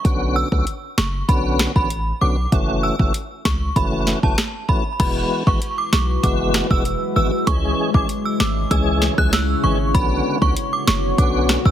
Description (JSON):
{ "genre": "dancehall", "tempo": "97 BPM", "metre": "4/4", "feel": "straight", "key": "unclear", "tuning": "A4 = 440 Hz", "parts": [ { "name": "tonewheel organ", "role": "accompaniment", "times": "0.0-11.7 s", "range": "D3 to G#4", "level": "-23 LUFS", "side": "left 1 dB", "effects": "chorus vibrato, fast rotary speaker" }, { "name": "hard-hitting 808-style bass", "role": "bass", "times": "0.0-11.7 s", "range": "E1 to C#2", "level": "-22 LUFS", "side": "equal", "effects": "none" }, { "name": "afro-pop drum kit", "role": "drums", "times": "0.0-11.7 s", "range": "crash cymbal, hi-hat, kick drum, rim click, snare drum", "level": "-20 LUFS", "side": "equal", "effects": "none" }, { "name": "synth chime", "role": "melody", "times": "0.4-11.7 s", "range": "A5 to F#6", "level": "-24 LUFS", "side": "right 2 dB", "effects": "ensemble chorus, ping-pong delay" }, { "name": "deep dark ambient pad", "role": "sustained chords", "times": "5.7-11.7 s", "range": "C#3 to C#5", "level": "-25 LUFS", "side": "left 2 dB", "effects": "chorus, built-in reverb, sidechain pumping" } ], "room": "light reverb", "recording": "heavily compressed radio sound", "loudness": "-17 LUFS", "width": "side -10 dB against mid", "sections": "0.0-5.0 A section; 5.0-11.7 B section", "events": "none", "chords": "0.0 Bmadd9; 2.5 F#m7; 5.0 Eadd9; 7.5 C#m; 9.9 Bmadd9" }